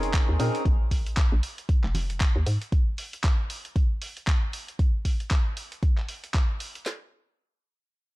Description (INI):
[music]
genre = deep house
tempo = 116 BPM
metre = 4/4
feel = swing 58% on 16ths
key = Bb minor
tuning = A4 = 442 Hz
[part]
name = warm analog pad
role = sustained chords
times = 0.0-0.6 s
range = Ab5 to Eb6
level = -39 LUFS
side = left 1 dB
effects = chorus, sidechain pumping
[part]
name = percussive organ stab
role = stabs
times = 0.0-0.6 s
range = C4 to Bb4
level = -30 LUFS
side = equal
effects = lush chorus, sidechain pumping, ping-pong delay
[part]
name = hollow knocking FM bass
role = bass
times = 0.0-2.6 s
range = F1 to Bb2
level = -27 LUFS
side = equal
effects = sidechain pumping
[part]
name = dusty soul sampler-style drum kit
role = drums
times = 0.0-6.8 s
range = handclaps, hi-hat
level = -34 LUFS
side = equal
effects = studio reverb
[part]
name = deep house drum kit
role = drums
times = 0.1-7.0 s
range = handclaps, kick drum, snare drum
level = -23 LUFS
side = equal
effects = studio reverb
[part]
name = congas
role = percussion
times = 1.9-2.1 s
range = none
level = -37 LUFS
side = right 2 dB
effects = none
[sound]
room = little or no reverb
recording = dark, warm production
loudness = -24 LUFS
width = side -19 dB against mid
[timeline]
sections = 0.0-6.9 A section; 6.9-8.2 B section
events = none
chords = 0.0 Bbm11; 2.5 N.C.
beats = 0.14 | 0.65 1.17 1.69 2.21 | 2.72 3.24 3.76 4.28 | 4.79 5.31 5.83 6.34 | 6.86